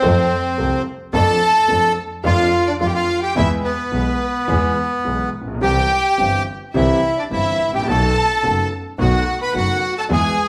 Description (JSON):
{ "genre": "tango", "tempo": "107 BPM", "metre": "4/4", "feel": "rubato", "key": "unclear", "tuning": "A4 = 440 Hz", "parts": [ { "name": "bandoneon", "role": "melody", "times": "0.0-10.5 s", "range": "B3 to B4", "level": "-21 LUFS", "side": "equal", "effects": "none" }, { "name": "warm studio violin section", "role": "second line", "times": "0.0-10.5 s", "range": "B4 to B5", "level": "-26 LUFS", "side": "equal", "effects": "none" }, { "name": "warm concert grand piano", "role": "accompaniment", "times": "0.0-10.3 s", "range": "F#1 to A4", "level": "-25 LUFS", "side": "equal", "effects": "none" }, { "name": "dark double bass", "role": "bass", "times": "0.0-10.3 s", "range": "F#1 to F2", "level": "-24 LUFS", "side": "equal", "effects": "none" } ], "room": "wet large studio reverb, RT60 1.2 s", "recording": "band playing live in one room", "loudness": "-18 LUFS", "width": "mono", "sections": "0.0-10.5 A section", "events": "none", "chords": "0.0 F; 1.1 Dm/F; 3.4 E; 5.6 C; 7.9 B7" }